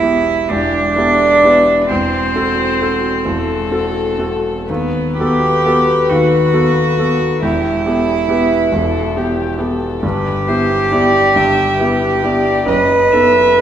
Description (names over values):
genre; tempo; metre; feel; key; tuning
classical, slow romantic movement for piano trio; 39-47 BPM (dotted quarters); 6/8; rubato; E minor; A4 = 440 Hz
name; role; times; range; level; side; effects
rich cello; second line; 0.0-13.6 s; B3 to B4; -14 LUFS; right 2 dB; none
warm concert grand piano; accompaniment; 0.0-13.6 s; E1 to A4; -17 LUFS; equal; none
dark violin; melody; 0.5-13.6 s; G4 to E5; -21 LUFS; left 6 dB; none
room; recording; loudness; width
wet recital hall reverb, RT60 1.5 s; recorded in a church or concert hall; -12 LUFS; side -10 dB against mid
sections
0.0-13.6 A section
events
none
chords
0.0 Em; 1.9 F#m7b5/E; 4.7 B7/D#; 7.4 Em; 10.0 Em/G; 12.7 B7/F#